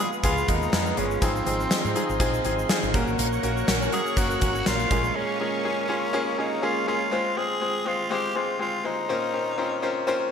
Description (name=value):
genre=1980s-style pop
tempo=122 BPM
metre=4/4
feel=swing 55% on 16ths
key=F minor from 7.1 s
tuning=A4 = 440 Hz
part: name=raspy tenor saxophone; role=melody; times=0.0-10.3 s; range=C4 to Ab4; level=-28 LUFS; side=equal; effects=ping-pong delay
part: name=bright baby grand piano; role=accompaniment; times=0.0-10.3 s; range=Ab2 to C5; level=-27 LUFS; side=left 2 dB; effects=none
part: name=lush unison pad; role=sustained chords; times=0.0-7.1 s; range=Ab4 to Db6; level=-33 LUFS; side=equal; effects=chorus, phaser
part: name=direct-recorded clean electric guitar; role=riff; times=0.0-7.7 s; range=F3 to Ab4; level=-33 LUFS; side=right 8 dB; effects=wide subtle chorus
part: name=egg shaker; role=percussion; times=0.1-5.1 s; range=none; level=-43 LUFS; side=right 7 dB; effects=none
part: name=woody fretless electric bass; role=bass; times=0.2-5.1 s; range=Gb1 to Ab2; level=-30 LUFS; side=equal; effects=none
part: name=gated 80s drum kit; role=drums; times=0.2-5.0 s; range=hi-hat, kick drum, snare drum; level=-26 LUFS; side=equal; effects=gated reverb
room=moderate plate reverb, RT60 2.0 s, small room ambience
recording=bright 1980s-style digital production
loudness=-22 LUFS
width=side -7 dB against mid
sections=0.0-7.1 A section; 7.1-10.3 B section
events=break 5.2-7.1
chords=0.0 Fdim; 1.2 Ab6; 2.9 Gb; 4.9 Bbm7; 7.1 Fm; 9.1 Bbmadd9